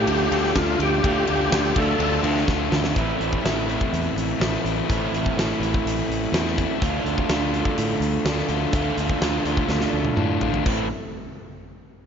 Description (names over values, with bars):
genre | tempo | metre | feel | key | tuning
classic rock | 125 BPM | 4/4 | straight | A minor | A4 = 440 Hz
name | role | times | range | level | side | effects
overdriven tonewheel organ | melody | 0.0-2.2 s | F4 to A4 | -24 LUFS | left 1 dB | slow rotary speaker, chorus vibrato
string machine, full ensemble | sustained chords | 0.0-2.9, 6.8-11.0 s | A3 to A4 | -36 LUFS | equal | none
crunchy overdriven guitar | riff | 0.0-10.9 s | A2 to A4 | -26 LUFS | left 11 dB | none
crunchy overdriven guitar | riff | 0.0-10.9 s | A2 to F4 | -26 LUFS | right 11 dB | none
modern bright fingered electric bass | bass | 0.0-10.9 s | A1 to A2 | -27 LUFS | equal | none
huge arena drum kit | drums | 0.1-10.8 s | crash cymbal, hi-hat, kick drum, ride cymbal, snare drum, toms | -26 LUFS | equal | none
room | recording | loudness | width
light reverb, studio reverb | nothing above 7.5 kHz | -20 LUFS | side -7 dB against mid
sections
0.0-3.0 A section; 3.0-10.7 B section; 10.7-12.1 C section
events
drum fill 2.5-3.0, 9.7-10.7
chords
0.0 Dm; 3.0 Am; 6.8 Dm; 10.7 Am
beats
0.07 0.55 | 1.03 1.52 2.00 2.48 | 2.96 3.44 3.92 4.41 | 4.89 5.37 5.85 6.33 | 6.82 7.30 7.78 8.26 | 8.74 9.22 9.71 10.19 | 10.67